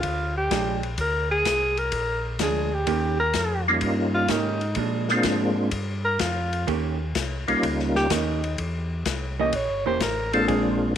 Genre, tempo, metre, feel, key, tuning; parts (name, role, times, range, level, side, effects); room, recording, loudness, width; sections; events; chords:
soul jazz organ trio; 126 BPM; 4/4; swing 69% on 8ths; Bb mixolydian; A4 = 441 Hz
breathy alto saxophone; melody; 0.0-10.7 s; Eb4 to Eb5; -25 LUFS; equal
mellow tonewheel organ; bass; 0.0-10.9 s; E1 to Bb2; -29 LUFS; equal; chorus vibrato, slow rotary speaker
open jazz drum kit; drums; 0.0-10.6 s; hi-hat, kick drum, ride cymbal, snare drum; -30 LUFS; left 6 dB
hollow-body jazz guitar; accompaniment; 0.5-10.8 s; Eb3 to G4; -29 LUFS; right 12 dB
percussive tonewheel organ; melody; 3.7-10.9 s; G3 to F4; -23 LUFS; equal; slow rotary speaker, chorus vibrato
light reverb, small room ambience; 1960s-style stereo with parts hard left and right; -22 LUFS; side -9 dB against mid
0.0-11.0 A section
alto saxophone solo 0.0-11.0
0.0 Bb7; 2.9 Eb7; 4.8 Bb7; 6.7 Eb7; 8.6 Edim7